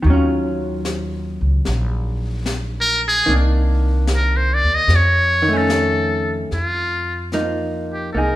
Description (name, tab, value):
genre	jazz ballad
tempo	74 BPM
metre	4/4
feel	swing 69% on 8ths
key	unclear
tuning	A4 = 441 Hz
part	vintage hollow-body jazz guitar	accompaniment	0.0-8.4 s	Eb3 to Ab4	-22 LUFS	equal	none
part	upright bass	bass	0.0-8.4 s	Bb1 to F2	-20 LUFS	equal	none
part	jazz brush drum kit	drums	0.0-8.4 s	brushed snare drum, hi-hat, snare drum	-29 LUFS	left 2 dB	none
part	trumpet with metal mute	melody	2.8-8.4 s	F4 to Eb5	-18 LUFS	equal	none
room	moderate recital hall reverb, RT60 1.5 s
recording	recorded in a church or concert hall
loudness	-16 LUFS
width	side -15 dB against mid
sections	0.0-6.5 A section; 6.5-8.4 B section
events	muted trumpet solo 0.0-6.5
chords	0.0 Ebm9; 3.3 Cm9; 4.9 Faug7; 6.5 F7(no3)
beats	| 0.05 0.85 1.66 2.46 | 3.27 4.07 4.88 5.69 | 6.50 7.31 8.12